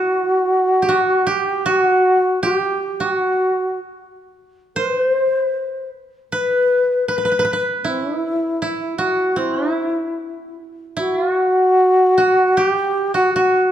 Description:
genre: japanese traditional, Japanese chamber music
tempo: 78 BPM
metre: 2/4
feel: rubato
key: unclear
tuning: A4 = 440 Hz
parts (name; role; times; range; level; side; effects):
- mellow alto flute; melody; 0.0-13.7 s; E4 to C5; -16 LUFS; left 1 dB; none
- koto; second line; 0.0-13.7 s; E4 to C5; -22 LUFS; right 3 dB; none
room: moderate recital hall reverb, RT60 1.5 s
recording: dark, warm production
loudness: -15 LUFS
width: side -10 dB against mid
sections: 0.0-11.0 A section; 11.0-13.7 B section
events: none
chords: none

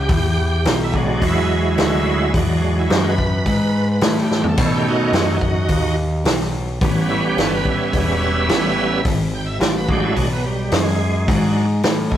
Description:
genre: blues rock power trio and southern rock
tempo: 107 BPM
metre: 4/4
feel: straight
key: unclear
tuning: A4 = 440 Hz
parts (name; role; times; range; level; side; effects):
- bright tonewheel organ; sustained chords; 0.0-12.2 s; D#3 to G5; -20 LUFS; right 2 dB; slow rotary speaker, overdrive, chorus vibrato
- growling picked electric bass; bass; 0.0-12.2 s; E1 to B2; -20 LUFS; equal; overdrive
- vintage drum kit; drums; 0.1-12.2 s; hi-hat, kick drum, snare drum, splash cymbal, toms; -20 LUFS; equal; none
room: moderate stone room reverb, RT60 1.4 s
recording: rough rehearsal-room recording, tube saturation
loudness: -16 LUFS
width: side -11 dB against mid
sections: 0.0-12.2 A section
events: tonewheel organ solo 0.0-12.2; drum fill 4.3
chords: 0.1 E7; 4.6 B7; 6.8 A7; 9.1 G#m7b5

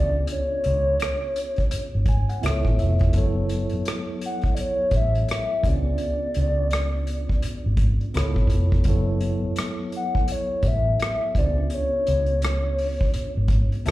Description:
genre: R&B, neo-soul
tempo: 84 BPM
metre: 4/4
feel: swing 61% on 16ths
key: unclear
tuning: A4 = 438 Hz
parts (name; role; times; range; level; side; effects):
- hollow clarinet-like synth lead; melody; 0.0-13.9 s; C#5 to F#5; -26 LUFS; left 1 dB; chorus, slapback echo
- mellow tine electric piano; accompaniment; 0.0-13.9 s; F#3 to B5; -31 LUFS; right 1 dB; medium stereo tremolo
- vintage muted fingered electric bass; bass; 0.0-13.9 s; E#1 to C#2; -22 LUFS; equal; none
- unplugged drum kit; drums; 0.3-13.9 s; hi-hat, kick drum, rim click; -25 LUFS; equal; none
room: little or no reverb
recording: live gig heard through the venue's PA, club reverb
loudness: -20 LUFS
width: side -16 dB against mid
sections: 0.0-13.9 A section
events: tine electric piano fill 1.7-3.1, 7.8-8.9, 13.5-13.9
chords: 0.0 C#7b9; 2.4 C#7alt; 3.1 F#m7; 5.6 C#7b9; 8.1 C#7alt; 8.9 F#m7; 11.4 C#7b9

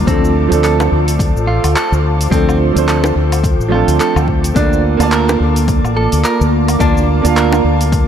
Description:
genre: sunset chillout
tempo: 107 BPM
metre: 4/4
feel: swing 58% on 16ths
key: D minor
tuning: A4 = 442 Hz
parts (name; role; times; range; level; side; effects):
- warm baby grand piano; accompaniment; 0.0-8.1 s; F3 to A5; -16 LUFS; moving between left 5 dB and right 6 dB; auto-pan, tape echo
- ethereal airy pad; sustained chords; 0.0-8.1 s; Bb3 to D6; -21 LUFS; right 1 dB; ensemble chorus, built-in reverb
- mellow fretless electric bass; bass; 0.0-8.1 s; A1 to D2; -15 LUFS; left 1 dB; none
- clean electric guitar; arpeggios; 0.1-7.6 s; C4 to Bb4; -21 LUFS; right 2 dB; tape echo
- deep house drum kit; drums; 0.1-8.1 s; handclaps, hi-hat, shaker, woodblock; -22 LUFS; left 1 dB; overdrive
- electronic kick drum; drums; 0.1-8.1 s; none; -17 LUFS; left 1 dB; overdrive
- bongos; percussion; 0.8-7.6 s; none; -21 LUFS; equal; none
room: light reverb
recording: dark, warm production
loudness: -11 LUFS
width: side -8 dB against mid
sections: 0.0-8.1 A section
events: none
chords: 0.1 Dm7; 4.6 Bbmaj7

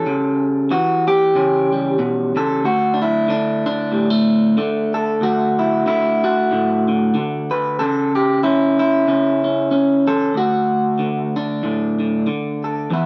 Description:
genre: folk, solo fingerstyle acoustic guitar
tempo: 94 BPM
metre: 4/4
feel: swing 56% on 8ths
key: D major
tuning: A4 = 440 Hz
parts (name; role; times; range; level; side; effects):
- electric guitar through a small old amp; solo; 0.0-13.1 s; D2 to B4; -18 LUFS; equal; none
room: wet studio reverb, RT60 0.6 s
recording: band playing live in one room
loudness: -18 LUFS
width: mono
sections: 0.0-12.9 A section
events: none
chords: 0.0 A7/C#; 2.6 D; 7.8 N.C.; 10.3 D

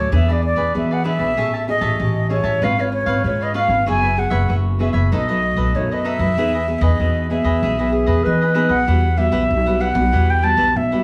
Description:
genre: samba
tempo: 96 BPM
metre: 4/4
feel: straight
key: E major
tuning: A4 = 440 Hz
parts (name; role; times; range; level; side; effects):
- mellow concert flute; melody; 0.0-11.0 s; C#5 to A5; -23 LUFS; equal; none
- cavaquinho; accompaniment; 0.0-11.0 s; D#4 to A5; -30 LUFS; equal; none
- nylon-string guitar; accompaniment; 0.0-11.0 s; F#2 to B4; -26 LUFS; equal; none
- upright bass; bass; 0.0-11.0 s; F#1 to E3; -22 LUFS; equal; none
- dark clarinet; second line; 7.9-8.9 s; G#4 to B4; -21 LUFS; equal; none
room: light reverb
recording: small room ambience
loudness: -18 LUFS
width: mono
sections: 0.0-8.9 A section; 8.9-11.0 B section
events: none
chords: 0.1 E7; 1.4 Amaj7; 2.6 C#7/G#; 3.9 F#9sus4; 5.1 B7; 6.4 Emaj7; 8.9 Emadd9

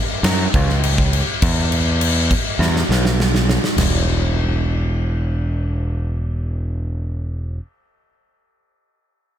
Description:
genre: rock, shoegaze and dream pop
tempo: 102 BPM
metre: 4/4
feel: straight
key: unclear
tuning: A4 = 439 Hz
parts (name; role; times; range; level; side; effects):
- growling fingered electric bass; bass; 0.2-7.6 s; E1 to F#2; -18 LUFS; equal; overdrive
- huge arena drum kit; drums; 0.2-3.9 s; crash cymbal, kick drum, snare drum, toms; -19 LUFS; equal; none
room: little or no reverb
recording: none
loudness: -16 LUFS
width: side -10 dB against mid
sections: 0.0-3.8 A section; 3.8-6.1 B section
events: drum fill 2.6-3.8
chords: none

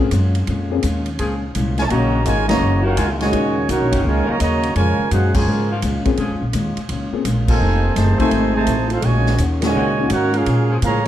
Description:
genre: jazz, big band swing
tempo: 168 BPM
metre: 4/4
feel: swing 65% on 8ths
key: Bb minor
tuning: A4 = 444 Hz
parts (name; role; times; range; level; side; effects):
- clear upright piano; accompaniment; 0.0-10.1 s; A3 to F5; -24 LUFS; left 6 dB; none
- upright bass; bass; 0.0-11.1 s; F1 to Bb2; -20 LUFS; equal; none
- picked steel-string acoustic guitar; accompaniment; 0.1-11.1 s; Bb2 to G#4; -26 LUFS; left 2 dB; none
- swinging big-band drum kit; drums; 0.1-11.1 s; crash cymbal, hi-hat, kick drum, ride cymbal, snare drum; -26 LUFS; equal; none
- clear saxophone section; sustained chords; 1.2-10.8 s; Eb3 to A4; -29 LUFS; left 2 dB; none
- warm trumpet section; melody; 1.8-11.1 s; Db4 to Bb5; -22 LUFS; right 2 dB; none
- warm trombone section; second line; 1.8-11.1 s; Bb2 to Gb4; -22 LUFS; right 2 dB; none
room: moderate recital hall reverb, RT60 1.6 s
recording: dark, warm production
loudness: -16 LUFS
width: side -12 dB against mid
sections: 0.0-11.1 A section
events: band accent 2.4, 5.3, 7.4, 9.6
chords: 0.0 Bbm7; 1.9 Ebm7; 4.8 Bbm7; 7.6 F7#9; 9.0 Ebm7; 10.5 Bbm7

